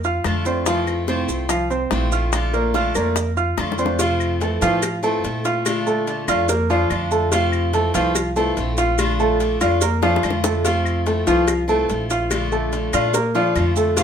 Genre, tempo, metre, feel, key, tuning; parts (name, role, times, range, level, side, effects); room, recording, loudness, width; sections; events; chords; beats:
latin, Cuban son and guajira; 144 BPM; 4/4; straight; F major; A4 = 435 Hz
clear concert grand piano; arpeggios; 0.0-14.0 s; F3 to F6; -20 LUFS; right 1 dB
upright bass; bass; 0.0-14.0 s; Bb1 to Bb2; -24 LUFS; equal
maracas; percussion; 0.0-14.0 s; -31 LUFS; right 6 dB
picked steel-string acoustic guitar; accompaniment; 0.2-14.0 s; C3 to F4; -24 LUFS; left 3 dB
bongos and cowbell; percussion; 0.2-14.0 s; -27 LUFS; left 5 dB
claves; percussion; 0.2-13.8 s; -32 LUFS; left 9 dB
moderate studio reverb, RT60 0.8 s; minimal, uncompressed stereo recording; -17 LUFS; side -8 dB against mid
0.0-4.0 A section; 4.0-14.0 B section
drum fill 3.6-4.0, 10.0-10.6
0.0 Bbmaj7 (rootless); 0.7 Fmaj7; 2.3 Bbmaj7; 4.0 Fmaj7; 5.7 Bbmaj7; 7.3 Fmaj7; 9.0 Bbmaj7; 10.6 Fmaj7; 12.3 Bbmaj7
0.24 | 0.66 1.08 1.49 1.91 | 2.33 2.74 3.16 3.58 | 3.99 4.41 4.83 5.24 | 5.66 6.08 6.49 6.91 | 7.32 7.74 8.15 8.57 | 8.99 9.40 9.82 10.23 | 10.65 11.06 11.48 11.89 | 12.31 12.73 13.14 13.56 | 13.97